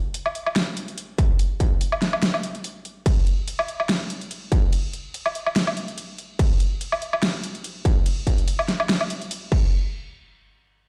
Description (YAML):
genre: dubstep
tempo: 144 BPM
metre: 4/4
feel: swing 55% on 16ths, half-time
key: none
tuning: none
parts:
  - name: dubstep drum kit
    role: drums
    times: 0.1-9.6 s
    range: crash cymbal, hi-hat, snare drum, woodblock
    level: -27 LUFS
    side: equal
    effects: none
  - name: electronic kick drum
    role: drums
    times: 1.2-9.6 s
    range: none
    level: -22 LUFS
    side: equal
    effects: distortion
room: light reverb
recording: played on a big sound system in a bare room, large studio reverb, faint mains hum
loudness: -24 LUFS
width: mono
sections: 0.0-9.7 A section; 9.7-10.9 B section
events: drop 0.0-9.7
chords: none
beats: 0.14 0.56 0.98 | 1.39 1.81 2.23 2.64 | 3.06 3.48 3.89 4.31 | 4.73 5.14 5.56 5.98 | 6.39 6.81 7.23 7.64 | 8.06 8.48 8.89 9.31